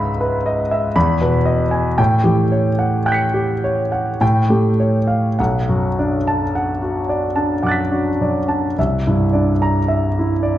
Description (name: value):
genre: classical, impressionist solo piano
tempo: 51-60 BPM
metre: 3/4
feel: rubato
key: unclear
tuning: A4 = 440 Hz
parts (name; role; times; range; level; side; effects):
- clear grand piano; solo; 0.0-10.6 s; B1 to C#7; -15 LUFS; equal; none
room: moderate recital hall reverb, RT60 1.4 s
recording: dark, warm production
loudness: -15 LUFS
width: side -13 dB against mid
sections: 0.0-10.6 A section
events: none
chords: 0.0 C#m9; 1.0 Emaj7; 2.0 A13; 4.2 Aaug7; 5.4 Bm7; 8.8 C9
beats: 0.95 | 1.99 3.08 4.21 | 5.38 6.54 7.64 | 8.77 9.89